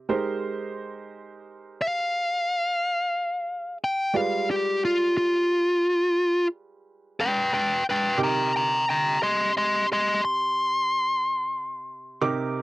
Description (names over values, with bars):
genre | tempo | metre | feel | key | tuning
blues | 59 BPM (dotted quarters) | 12/8 | straight | C minor | A4 = 439 Hz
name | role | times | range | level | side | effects
clear upright piano | accompaniment | 0.0-12.6 s | C3 to D6 | -29 LUFS | right 4 dB | none
smooth overdriven lead guitar | melody | 1.8-12.2 s | F4 to C6 | -22 LUFS | left 1 dB | none
room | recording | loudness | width
light reverb | dry, close 1970s-style studio recording | -22 LUFS | side -18 dB against mid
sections
0.0-12.6 A section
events
lead electric guitar solo 0.0-12.6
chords
0.1 Abmaj7; 4.1 G7b9; 8.2 Cm9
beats
| 0.08 1.10 2.11 3.12 | 4.13 5.14 6.15 7.16 | 8.17 9.18 10.19 11.20 | 12.21